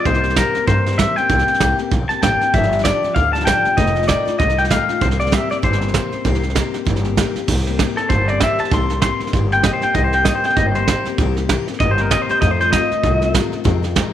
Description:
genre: rockabilly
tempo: 194 BPM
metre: 4/4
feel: swing 59% on 8ths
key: C mixolydian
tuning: A4 = 440 Hz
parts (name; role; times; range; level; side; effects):
- electric guitar through a small old amp; melody; 0.0-13.3 s; A4 to C6; -18 LUFS; left 1 dB; spring reverb, tape echo
- picked steel-string acoustic guitar; accompaniment; 0.0-14.1 s; F2 to G4; -24 LUFS; left 11 dB; none
- upright bass; bass; 0.1-14.0 s; F1 to G2; -21 LUFS; equal; none
- soft brush drum kit; drums; 0.1-14.0 s; crash cymbal, hi-hat, kick drum, snare drum; -20 LUFS; right 3 dB; none
room: small room ambience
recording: 1960s-style stereo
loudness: -15 LUFS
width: side -11 dB against mid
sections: 0.0-7.5 A section; 7.5-14.1 B section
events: clean electric guitar solo 7.5-14.1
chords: 0.1 C7; 2.5 G7; 3.8 F7; 5.0 C7; 12.4 F7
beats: | 0.05 0.36 0.67 0.98 | 1.29 1.60 1.91 2.22 | 2.53 2.84 3.15 3.46 | 3.77 4.08 4.39 4.70 | 5.01 5.32 5.63 5.94 | 6.25 6.55 6.86 7.17 | 7.48 7.79 8.10 8.41 | 8.72 9.03 9.34 9.64 | 9.95 10.26 10.57 10.88 | 11.19 11.49 11.80 12.11 | 12.42 12.73 13.04 13.34 | 13.65 13.96

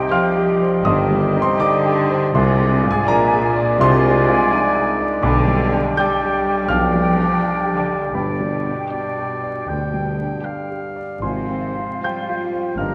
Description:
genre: classical, romantic movement for piano and orchestra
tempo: 70-87 BPM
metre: 4/4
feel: rubato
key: unclear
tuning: A4 = 440 Hz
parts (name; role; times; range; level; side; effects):
- warm grand piano; melody; 0.0-12.9 s; B1 to G6; -22 LUFS; equal; none
- large flute ensemble; second line; 0.0-12.9 s; Eb5 to Ab5; -30 LUFS; equal; none
- mellow clarinet; second line; 0.0-12.9 s; D4 to G4; -30 LUFS; equal; none
- warm oboe; second line; 0.0-12.9 s; Bb4 to G5; -27 LUFS; equal; none
- mellow French horn section; sustained chords; 0.0-12.9 s; F3 to F4; -32 LUFS; equal; none
- rich symphonic cello section; bass; 0.0-12.9 s; Ab2 to G3; -26 LUFS; equal; none
- clear symphonic violin section; melody; 0.1-12.6 s; F4 to Ab4; -41 LUFS; equal; none
- rich symphonic violin section; second line; 0.1-12.6 s; none; barely audible; none; none
- rich symphonic viola section; accompaniment; 0.1-12.6 s; none; barely audible; none; none
- mellow tuba; bass; 0.8-12.9 s; G1 to D2; -27 LUFS; equal; none
- rich symphonic double bass section; bass; 0.9-12.9 s; G1 to D2; -29 LUFS; equal; none
room: wet scoring stage reverb, RT60 1.6 s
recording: vinyl crackle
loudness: -18 LUFS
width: mono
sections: 0.0-12.9 A section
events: none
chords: 0.0 Cm; 2.3 Dm7b5/C; 5.2 G7/B; 8.1 G; 11.2 Fm/Ab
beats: 0.10 0.85 1.59 | 2.33 3.06 3.79 4.51 | 5.22 5.98 6.68 7.39 | 8.13 8.89 9.67 10.44 | 11.22 12.04 12.78

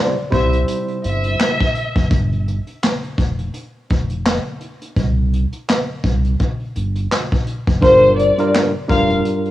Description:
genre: hip hop, boom-bap hip-hop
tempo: 84 BPM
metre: 4/4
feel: swing 56% on 16ths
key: unclear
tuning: A4 = 435 Hz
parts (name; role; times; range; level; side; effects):
- tine electric piano; accompaniment; 0.0-1.7, 7.8-9.5 s; G2 to C5; -18 LUFS; equal; overdrive, fast stereo tremolo, cassette tape, high-pass filter, low-pass filter
- vintage brush drum kit; drums; 0.2-9.5 s; handclaps, hi-hat, kick drum, snare drum; -19 LUFS; equal; cassette tape
- warm studio violin section; melody; 0.3-2.1, 7.8-9.1 s; C5 to F5; -16 LUFS; left 1 dB; high-pass filter, low-pass filter, cassette tape, analog delay
- sub bass with octave; bass; 0.3-9.2 s; F1 to C2; -19 LUFS; equal; none
room: small room reverb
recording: home recording on cassette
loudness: -15 LUFS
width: side -14 dB against mid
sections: 0.0-9.5 A section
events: none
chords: 0.0 C; 2.1 Fsus2; 5.0 C5; 7.8 Gm7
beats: 0.68 1.40 | 2.11 2.82 3.54 4.25 | 4.97 5.68 6.39 7.11 | 7.82 8.54 9.25

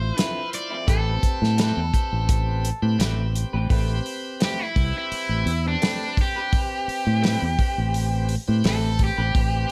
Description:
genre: straight-eighth soul blues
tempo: 85 BPM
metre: 4/4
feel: swing 53% on 16ths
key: A minor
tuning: A4 = 440 Hz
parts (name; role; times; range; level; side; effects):
- overdriven electric guitar; melody; 0.0-9.7 s; D4 to D5; -30 LUFS; equal; none
- bright tonewheel organ; accompaniment; 0.0-9.7 s; C4 to G5; -36 LUFS; equal; overdrive, slow rotary speaker
- fingered electric bass; bass; 0.0-9.6 s; A1 to A2; -25 LUFS; equal; none
- electric guitar through a small old amp; stabs; 0.2-9.4 s; D3 to B4; -36 LUFS; equal; lush chorus
- warm soul drum kit; drums; 0.2-9.7 s; hi-hat, kick drum, snare drum; -26 LUFS; equal; none
room: little or no reverb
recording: none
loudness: -23 LUFS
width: mono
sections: 0.0-3.7 A section; 3.7-9.7 B section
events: tonewheel organ fill 2.6-3.7; overdriven electric guitar solo 3.7-9.7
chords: 0.0 Dm9; 0.9 Am9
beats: 0.17 | 0.88 1.58 2.29 3.00 | 3.70 4.41 5.11 5.82 | 6.53 7.23 7.94 8.64 | 9.35

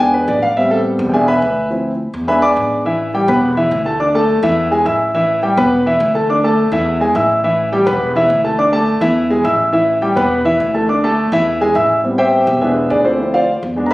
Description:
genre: latin, salsa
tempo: 209 BPM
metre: 4/4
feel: straight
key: A harmonic minor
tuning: A4 = 441 Hz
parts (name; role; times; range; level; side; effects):
- warm concert grand piano; accompaniment; 0.0-13.9 s; E3 to E6; -13 LUFS; equal; none
- upright bass; bass; 0.0-13.9 s; E1 to E2; -22 LUFS; equal; none
room: moderate large studio reverb, RT60 0.9 s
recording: recorded on a phone in the room, studio reverb, nothing above 10.9 kHz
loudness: -12 LUFS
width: side -18 dB against mid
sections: 0.0-2.9 A section; 2.9-12.0 B section; 12.0-13.9 A section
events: grand piano solo 0.0-2.9, 12.0-13.9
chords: 0.0 E7; 0.6 Am9; 1.1 E7; 1.7 Dm7; 2.3 E7; 2.9 Asus2; 3.4 E5; 4.0 D5; 4.6 E; 5.1 Asus2; 5.7 E5; 6.3 D5; 6.9 E; 7.4 Asus2; 8.0 E5; 8.6 D5; 9.2 E; 9.7 Asus2; 10.3 E5; 10.9 D5; 11.5 E; 12.0 Am9; 12.6 E7; 13.2 Dm7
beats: 0.28 | 0.56 0.85 1.14 1.42 | 1.71 1.99 2.28 2.57 | 2.85 3.14 3.42 3.71 | 4.00 4.28 4.57 4.86 | 5.14 5.43 5.72 6.00 | 6.29 6.58 6.86 7.15 | 7.44 7.72 8.01 8.30 | 8.59 8.87 9.16 9.45 | 9.74 10.02 10.31 10.60 | 10.89 11.17 11.46 11.75 | 12.04 12.33 12.62 12.90 | 13.19 13.48 13.77

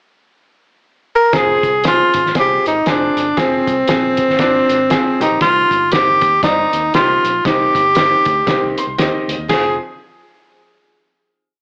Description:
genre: uptempo 1960s-style soul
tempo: 118 BPM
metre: 4/4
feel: swing 59% on 8ths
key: F dorian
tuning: A4 = 442 Hz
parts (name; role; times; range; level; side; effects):
- breathy tenor saxophone; melody; 1.2-9.8 s; C4 to Bb4; -16 LUFS; equal; none
- clear grand piano; accompaniment; 1.3-9.8 s; Eb3 to C6; -23 LUFS; equal; none
- vintage muted fingered electric bass; bass; 1.3-9.8 s; F1 to G2; -33 LUFS; equal; none
- cloth-damped thuddy drum kit; drums; 1.3-9.6 s; hi-hat, kick drum, ride cymbal, snare drum; -23 LUFS; equal; none
room: wet club reverb, RT60 0.8 s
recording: AM radio sound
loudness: -15 LUFS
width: mono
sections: 0.0-1.3 pickup bar; 1.3-9.5 verse; 9.5-11.5 final chord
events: grand piano fill 8.5-9.5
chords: 0.0 N.C.; 1.3 Fm; 5.2 Cm; 9.5 Fm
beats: 0.31 0.82 | 1.33 1.84 2.35 2.87 | 3.38 3.89 4.40 4.91 | 5.42 5.92 6.43 6.94 | 7.45 7.96 8.47 8.98 | 9.49

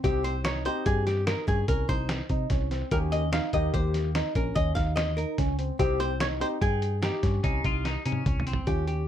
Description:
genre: progressive instrumental, band music in an uneven meter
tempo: 146 BPM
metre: 7/4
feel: straight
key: unclear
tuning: A4 = 439 Hz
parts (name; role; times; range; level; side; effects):
- archtop guitar, miked and amplified; melody; 0.0-9.1 s; G4 to F5; -31 LUFS; left 2 dB; plate reverb
- dark baby grand piano; accompaniment; 0.0-8.8 s; Bb3 to G4; -34 LUFS; left 5 dB; none
- barky tine electric piano; arpeggios; 0.0-9.0 s; C4 to G5; -34 LUFS; right 2 dB; overdrive, phaser
- hollow-body short-scale picked electric bass; bass; 0.0-9.1 s; Bb1 to C3; -29 LUFS; equal; none
- lo-fi sampler-style drum kit; drums; 0.0-9.0 s; hi-hat, kick drum, snare drum, toms; -30 LUFS; equal; none
- clean electric guitar; second line; 7.4-8.7 s; C4 to F4; -33 LUFS; left 3 dB; lush chorus
room: light reverb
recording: dark, warm production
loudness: -25 LUFS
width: side -10 dB against mid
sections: 0.0-8.7 A section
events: drum fill 7.8-8.7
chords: 0.0 Cm; 2.9 Eb; 5.8 Cm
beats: | 0.04 0.45 0.86 1.27 1.68 2.09 2.50 | 2.92 3.33 3.74 4.15 4.56 4.97 5.38 | 5.79 6.20 6.62 7.03 7.44 7.85 8.26 | 8.67

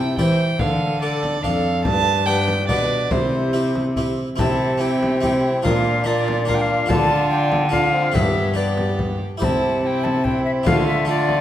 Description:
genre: classical, renaissance-style consort dance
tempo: 143 BPM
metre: 3/4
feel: straight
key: C major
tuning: A4 = 440 Hz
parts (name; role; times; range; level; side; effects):
- alto recorder; melody; 0.0-11.4 s; G4 to B5; -25 LUFS; left 4 dB; none
- rich violin; second line; 0.0-11.4 s; E4 to A5; -26 LUFS; right 4 dB; none
- clear bassoon; accompaniment; 0.0-11.4 s; A3 to E4; -26 LUFS; left 1 dB; none
- harpsichord; accompaniment; 0.0-11.4 s; F2 to C5; -24 LUFS; equal; none
- rich cello; bass; 0.0-11.4 s; F2 to E3; -23 LUFS; equal; none
- frame drum; percussion; 0.2-11.4 s; none; -26 LUFS; left 1 dB; none
room: wet recital hall reverb, RT60 1.7 s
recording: none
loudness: -17 LUFS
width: side -11 dB against mid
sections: 0.0-4.4 A section; 4.4-11.4 A section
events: none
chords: 0.0 C; 0.6 Dm; 1.9 G; 3.1 C; 5.6 Bb; 6.9 Dm; 8.1 G; 9.4 C; 10.7 Dm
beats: 0.18 | 0.60 1.01 1.43 | 1.85 2.27 2.69 | 3.11 3.54 3.96 | 4.38 4.80 5.22 | 5.64 6.06 6.48 | 6.89 7.31 7.72 | 8.14 8.56 8.99 | 9.41 9.83 10.25 | 10.66 11.08

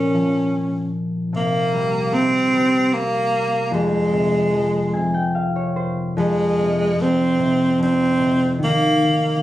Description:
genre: children's music, lullaby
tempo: 74 BPM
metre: 3/4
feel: straight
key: F minor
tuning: A4 = 435 Hz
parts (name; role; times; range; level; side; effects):
- warm tenor saxophone; melody; 0.0-9.4 s; Ab3 to Db4; -18 LUFS; right 1 dB; none
- concert harp; accompaniment; 0.0-9.4 s; F2 to Ab5; -21 LUFS; left 1 dB; none
room: light reverb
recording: recorded on a phone in the room, studio reverb, compression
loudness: -17 LUFS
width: side -14 dB against mid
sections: 0.0-6.2 A section; 6.2-9.4 A section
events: harp fill 4.5-6.2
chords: 0.0 Bbm; 1.3 C5; 3.7 Fm; 8.6 N.C.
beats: 0.53 | 1.33 2.12 2.92 | 3.72 4.53 5.35 | 6.17 6.98 7.79 | 8.59 9.40

